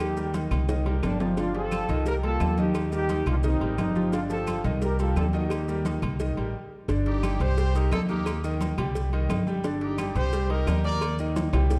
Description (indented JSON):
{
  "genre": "latin, salsa",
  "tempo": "174 BPM",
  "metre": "4/4",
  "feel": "straight",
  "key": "unclear",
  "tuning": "A4 = 440 Hz",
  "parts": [
    { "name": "clear trombone section", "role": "melody", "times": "0.0-6.0 s", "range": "Bb3 to Bb4", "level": "-33 LUFS", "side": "equal", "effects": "none" },
    { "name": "bright concert grand piano", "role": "accompaniment", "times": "0.0-11.8 s", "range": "D3 to Eb6", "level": "-34 LUFS", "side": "equal", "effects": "none" },
    { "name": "upright bass", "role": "bass", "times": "0.0-11.8 s", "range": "G1 to Eb2", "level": "-29 LUFS", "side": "equal", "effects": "none" },
    { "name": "cowbell", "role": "percussion", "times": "0.0-11.8 s", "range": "none", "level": "-41 LUFS", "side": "equal", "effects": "none" },
    { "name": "congas", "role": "percussion", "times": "0.2-11.8 s", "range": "none", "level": "-34 LUFS", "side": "equal", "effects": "none" },
    { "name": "maracas", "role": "percussion", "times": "0.2-11.8 s", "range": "none", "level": "-55 LUFS", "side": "equal", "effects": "none" },
    { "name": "timbales and agogo bells", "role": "percussion", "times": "0.3-11.8 s", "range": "none", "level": "-41 LUFS", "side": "equal", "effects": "none" },
    { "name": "claves", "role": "percussion", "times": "0.5-11.7 s", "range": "none", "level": "-48 LUFS", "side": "equal", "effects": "none" },
    { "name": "bright horn section", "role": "melody", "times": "7.1-11.2 s", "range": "Eb4 to D5", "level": "-34 LUFS", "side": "equal", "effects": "none" }
  ],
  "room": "moderate concert hall reverb, RT60 1.8 s",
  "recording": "dark, warm production",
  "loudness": "-26 LUFS",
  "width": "mono",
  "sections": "0.0-6.9 A section; 6.9-11.8 B section",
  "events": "drum fill 0.7-1.4, 11.4-11.8; stop 6.5-6.9",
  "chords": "0.0 Eb; 0.7 Cm7; 1.4 Gsus2; 2.1 Cm7; 4.1 Gsus2; 4.8 Cm7; 6.9 G5; 7.6 Cm7; 9.0 Cm; 9.6 G5; 10.3 Cm7"
}